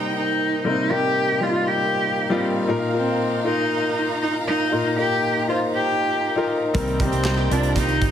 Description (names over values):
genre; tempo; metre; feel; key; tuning
piano-driven pop; 118 BPM; 4/4; straight; C minor; A4 = 440 Hz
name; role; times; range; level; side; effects
warm cello; melody; 0.0-8.1 s; C4 to G4; -23 LUFS; equal; none
warm upright piano; accompaniment; 0.0-8.1 s; Bb2 to C5; -23 LUFS; left 2 dB; none
warm studio string section; sustained chords; 0.0-8.1 s; Eb4 to Bb5; -32 LUFS; right 2 dB; none
picked plugged-in steel-string acoustic guitar; riff; 6.7-8.1 s; Eb3 to G4; -30 LUFS; right 10 dB; none
vintage muted fingered electric bass; bass; 6.7-8.1 s; G1 to C2; -23 LUFS; right 1 dB; none
modern studio drum kit; drums; 6.7-8.1 s; handclaps, hi-hat, kick drum, snare drum; -25 LUFS; right 1 dB; none
room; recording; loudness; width
moderate large studio reverb, RT60 1.2 s, small room ambience; heavily compressed radio sound; -19 LUFS; side -9 dB against mid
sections
0.0-8.1 A section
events
none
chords
0.0 Cm7; 2.7 Bbsus4; 6.7 Cm7